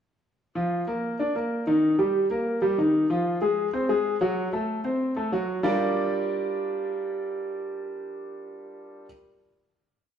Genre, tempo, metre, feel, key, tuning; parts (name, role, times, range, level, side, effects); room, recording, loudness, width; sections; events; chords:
latin; 189 BPM; 4/4; straight; G phrygian; A4 = 439 Hz
clear concert grand piano; solo; 0.6-9.1 s; Eb3 to D5; -24 LUFS; equal
wet stone room reverb, RT60 1.2 s; band playing live in one room; -24 LUFS; side -8 dB against mid
0.6-5.6 verse; 5.6-8.2 final chord
0.6 Bbadd11; 1.8 Eb; 3.1 Ab6; 4.4 F#dim; 5.6 Gm7